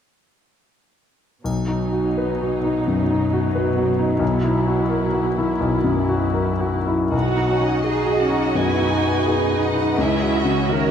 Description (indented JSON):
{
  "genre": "classical, romantic movement for piano and orchestra",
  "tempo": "84 BPM",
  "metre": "4/4",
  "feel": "uneven beats, rubato",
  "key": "B major",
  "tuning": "A4 = 441 Hz",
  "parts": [
    { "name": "clear grand piano", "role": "melody", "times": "1.4-10.9 s", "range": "B1 to B4", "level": "-20 LUFS", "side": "left 2 dB", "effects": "none" },
    { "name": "rich symphonic cello section", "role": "bass", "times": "1.4-10.9 s", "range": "B2 to A#4", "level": "-26 LUFS", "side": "right 3 dB", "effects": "none" },
    { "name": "rich symphonic viola section", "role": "accompaniment", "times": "1.5-10.9 s", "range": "F#3 to F#4", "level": "-25 LUFS", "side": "right 3 dB", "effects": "none" },
    { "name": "triangle", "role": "percussion", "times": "1.5-2.8 s", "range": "none", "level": "-44 LUFS", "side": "equal", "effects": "none" },
    { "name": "rich studio violin section", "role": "second line", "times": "7.1-10.9 s", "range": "D#4 to F#5", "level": "-26 LUFS", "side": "right 1 dB", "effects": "none" },
    { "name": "rich chamber violin section", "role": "melody", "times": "7.5-10.9 s", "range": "C#5 to G#5", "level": "-29 LUFS", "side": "left 1 dB", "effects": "none" }
  ],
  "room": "moderate concert hall reverb, RT60 1.8 s",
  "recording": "minimal, uncompressed stereo recording",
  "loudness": "-18 LUFS",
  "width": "side -8 dB against mid",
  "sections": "1.5-7.1 A section; 7.1-10.9 B section",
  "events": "none",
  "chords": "1.5 B; 4.2 F#7/B; 7.1 B; 10.0 F#7/C#"
}